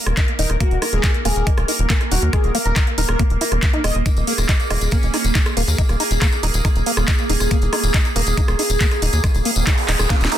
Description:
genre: psychedelic trance.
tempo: 139 BPM.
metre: 4/4.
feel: straight.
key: unclear.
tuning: A4 = 440 Hz.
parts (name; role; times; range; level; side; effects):
pulsing gated texture; sustained chords; 0.0-10.4 s; Bb3 to Bb4; -25 LUFS; right 2 dB; chorus, built-in reverb, sidechain pumping.
tight sequencer bass; bass; 0.1-10.3 s; Eb1 to Eb2; -19 LUFS; equal; none.
drum and bass drum kit; drums; 0.1-10.4 s; handclaps, hi-hat, rim click, snare drum; -23 LUFS; equal; overdrive.
liquid acid bass; riff; 0.2-10.4 s; Bb3 to Fb4; -28 LUFS; moving between left 3 dB and right 3 dB; phaser, auto-pan, sidechain pumping, dub echo.
electronic kick drum; drums; 0.2-10.2 s; none; -17 LUFS; equal; none.
wide unison lead; melody; 0.4-4.0 s; Eb4 to Eb5; -28 LUFS; left 1 dB; phaser, sidechain pumping, dub echo.
tambourine; percussion; 4.1-10.3 s; none; -30 LUFS; left 4 dB; none.
metallic wobble bass; second line; 4.7-5.2, 8.2-8.3 s; Bb3 to Db4; -33 LUFS; right 2 dB; wide subtle chorus, sidechain pumping, high-pass filter, dub echo.
noise sweep and zap; sound effects; 9.4-10.4 s; none; -26 LUFS; right 4 dB; none.
room: digital ambience.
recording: dense, heavily limited modern master.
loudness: -16 LUFS.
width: side -11 dB against mid.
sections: 0.0-10.4 A section.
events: filter sweep on acid bass 0.0-10.4; noise sweep 9.4-10.4; drum fill 10.1.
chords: 0.0 Eb5.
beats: 0.17 | 0.60 1.04 1.47 1.90 | 2.33 2.76 3.19 3.63 | 4.06 4.49 4.92 5.35 | 5.78 6.22 6.65 7.08 | 7.51 7.94 8.37 8.81 | 9.24 9.67 10.10.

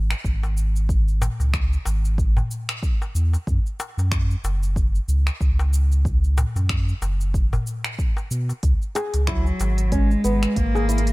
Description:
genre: organic downtempo.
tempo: 93 BPM.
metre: 4/4.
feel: swing 57% on 16ths.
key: unclear.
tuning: A4 = 440 Hz.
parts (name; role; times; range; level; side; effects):
warm sub bass; bass; 0.0-11.1 s; F#1 to B2; -20 LUFS; equal; none.
deep house drum kit; drums; 0.1-11.1 s; cabasa, finger snaps, hi-hat; -32 LUFS; equal; none.
darbuka; percussion; 0.1-10.9 s; none; -30 LUFS; left 2 dB; none.
electronic kick drum; drums; 0.2-10.7 s; none; -22 LUFS; equal; none.
flamenco guitar; arpeggios; 9.0-11.0 s; B3 to G#4; -27 LUFS; equal; ping-pong delay.
dark cello; melody; 9.3-11.1 s; F#3 to A#3; -24 LUFS; left 1 dB; none.
room: little or no reverb.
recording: none.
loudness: -19 LUFS.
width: side -21 dB against mid.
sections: 0.0-11.1 A section.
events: none.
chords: 0.0 N.C.; 3.5 F#5; 8.6 C#5.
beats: 0.24 | 0.89 1.53 2.18 2.82 | 3.47 4.12 4.76 5.41 | 6.05 6.70 7.34 7.99 | 8.63 9.28 9.92 10.57.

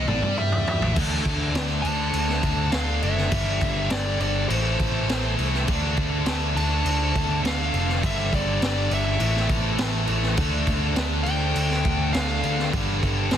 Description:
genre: hard rock.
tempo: 102 BPM.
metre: 4/4.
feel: straight.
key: unclear.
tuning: A4 = 440 Hz.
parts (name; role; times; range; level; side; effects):
smooth overdriven lead guitar; melody; 0.0-12.7 s; C5 to A5; -30 LUFS; left 1 dB; analog delay.
mellow tonewheel organ; sustained chords; 0.0-13.4 s; G3 to F5; -41 LUFS; right 2 dB; none.
heavy high-gain guitar; riff; 0.0-13.4 s; G2 to D4; -29 LUFS; left 13 dB; distortion.
tight distorted guitar; riff; 0.0-13.4 s; G2 to D4; -30 LUFS; right 13 dB; distortion.
picked electric bass; bass; 0.0-13.4 s; F1 to G2; -26 LUFS; equal; none.
raw garage drum kit; drums; 0.1-13.4 s; crash cymbal, kick drum, snare drum, toms; -26 LUFS; equal; soft clipping on kick.
room: small room reverb.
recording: dense, heavily limited modern master.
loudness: -21 LUFS.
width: side -10 dB against mid.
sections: 1.0-13.4 A section.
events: drum fill 0.0-1.0.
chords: 0.0 A5; 1.0 D5; 3.3 G5; 4.5 Am; 5.7 Dm; 8.0 G5; 9.2 A5; 10.4 Dm; 12.7 G5.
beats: 0.37 | 0.96 1.55 2.14 2.73 | 3.32 3.91 4.50 5.09 | 5.67 6.26 6.85 7.44 | 8.03 8.62 9.21 9.79 | 10.38 10.97 11.56 12.15 | 12.73 13.32.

